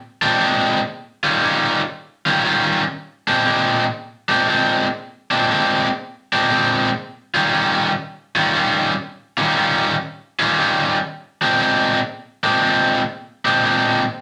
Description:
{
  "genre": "blues",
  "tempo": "118 BPM",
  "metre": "4/4",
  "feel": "swing 63% on 8ths",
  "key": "Bb mixolydian",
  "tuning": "A4 = 440 Hz",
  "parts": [
    { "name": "cranked stack guitar", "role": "solo", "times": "0.2-14.0 s", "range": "Bb2 to F4", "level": "-18 LUFS", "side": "equal", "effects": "overdrive" }
  ],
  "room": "wet studio reverb, RT60 0.6 s",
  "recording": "none",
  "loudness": "-19 LUFS",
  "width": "mono",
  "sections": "0.0-14.2 A section",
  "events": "none",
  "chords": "0.0 Bb9; 0.9 Eb9; 2.9 Bb9; 7.0 Eb9; 11.1 Bb9"
}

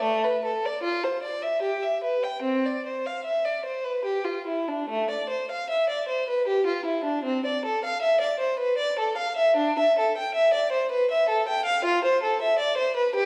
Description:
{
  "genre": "classical, baroque-style suite movement for unaccompanied violin",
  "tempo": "70-81 BPM",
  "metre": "3/4",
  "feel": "rubato",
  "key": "C major, A minor from 4.9 s",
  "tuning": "A4 = 440 Hz",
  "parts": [
    { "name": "rich violin", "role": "solo", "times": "0.0-13.3 s", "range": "A3 to G5", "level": "-25 LUFS", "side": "equal", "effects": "none" }
  ],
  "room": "wet recital hall reverb, RT60 1.4 s",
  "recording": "heard from further back in the room",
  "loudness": "-25 LUFS",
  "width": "mono",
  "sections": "0.0-4.9 A section; 4.9-13.3 A section",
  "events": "none",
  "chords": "none"
}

